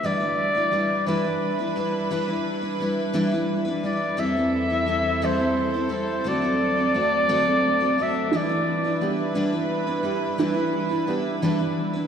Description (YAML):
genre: acoustic folk duo or small band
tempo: 58 BPM (dotted quarters)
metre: 6/8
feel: straight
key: unclear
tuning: A4 = 441 Hz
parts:
  - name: mellow flugelhorn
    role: melody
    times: 0.0-11.1 s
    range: B4 to E5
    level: -25 LUFS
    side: equal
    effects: none
  - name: picked steel-string acoustic guitar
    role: accompaniment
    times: 0.0-12.1 s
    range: D3 to B4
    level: -25 LUFS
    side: left 1 dB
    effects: none
  - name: warm chamber string section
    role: sustained chords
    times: 0.0-12.1 s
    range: E2 to B4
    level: -31 LUFS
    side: equal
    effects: none
  - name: felt-muted upright piano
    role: arpeggios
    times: 8.3-12.1 s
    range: E3 to G4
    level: -27 LUFS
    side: right 5 dB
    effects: none
room: wet cathedral reverb, RT60 4.7 s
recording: recorded in a church or concert hall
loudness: -21 LUFS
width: side -8 dB against mid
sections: 0.0-12.1 A section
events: none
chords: 0.0 Em7; 4.2 Am7/E; 6.2 D7; 8.3 Em7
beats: | 0.03 1.07 | 2.11 3.15 | 4.18 5.22 | 6.25 7.29 | 8.32 9.35 | 10.39 11.42